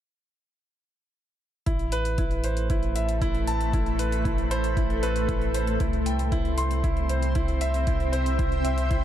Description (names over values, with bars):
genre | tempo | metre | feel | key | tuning
piano and strings electronica | 116 BPM | 4/4 | straight | unclear | A4 = 442 Hz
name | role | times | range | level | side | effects
granular cloud pad | sustained chords | 2.6-9.0 s | A3 to B5 | -31 LUFS | equal | built-in reverb, sidechain pumping
clear concert grand piano | riff | 1.7-9.0 s | E4 to C6 | -29 LUFS | right 1 dB | tape echo
round analog bass | bass | 1.7-9.0 s | A1 to C2 | -27 LUFS | equal | sidechain pumping
electronic hi-hat | drums | 1.7-9.0 s | none | -40 LUFS | left 4 dB | overdrive
electronic kick drum | drums | 1.7-9.0 s | none | -27 LUFS | equal | overdrive
room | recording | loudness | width
little or no reverb | none | -23 LUFS | side -11 dB against mid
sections
1.7-9.0 A section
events
none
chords
1.7 Amadd9; 5.8 C